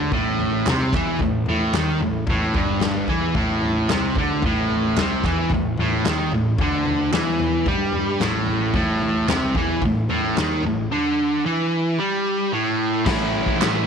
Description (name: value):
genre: garage rock duo or trio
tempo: 111 BPM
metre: 4/4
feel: straight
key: unclear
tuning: A4 = 440 Hz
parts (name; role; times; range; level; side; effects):
- biting overdriven guitar; riff; 0.0-13.9 s; G2 to E4; -20 LUFS; right 1 dB; none
- fuzz picked electric bass; bass; 0.0-13.9 s; G1 to G2; -28 LUFS; equal; overdrive, tube saturation
- raw garage drum kit; drums; 0.1-13.7 s; crash cymbal, kick drum, snare drum, toms; -25 LUFS; left 3 dB; none
- group handclap; percussion; 0.7-13.7 s; none; -31 LUFS; right 13 dB; none
room: small room ambience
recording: 1960s-style stereo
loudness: -19 LUFS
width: side -6 dB against mid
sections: 0.0-13.1 A section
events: none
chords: 0.0 A5; 13.1 A